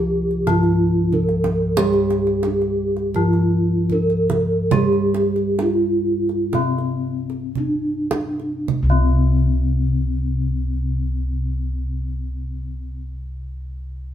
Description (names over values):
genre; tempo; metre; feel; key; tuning
Javanese gamelan; 51-92 BPM; 4/4; straight; C slendro; A4 = 440 Hz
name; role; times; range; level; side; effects
gamelan-type bronze metallophone; melody; 0.0-13.0 s; C4 to Bb4-45c; -22 LUFS; left 1 dB; none
gamelan-type bronze metallophone; accompaniment; 0.0-13.0 s; C3 to G3+25c; -24 LUFS; right 1 dB; none
gamelan-type bossed gongs; bass; 0.0-12.9 s; C2 to G4+25c; -23 LUFS; left 1 dB; none
kendang; percussion; 0.3-9.2 s; none; -26 LUFS; right 5 dB; none
room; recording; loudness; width
moderate stone room reverb, RT60 1.1 s; band playing live in one room; -18 LUFS; side -10 dB against mid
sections
0.0-8.7 A section; 8.7-13.5 B section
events
slowing down 1.8-8.7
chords
none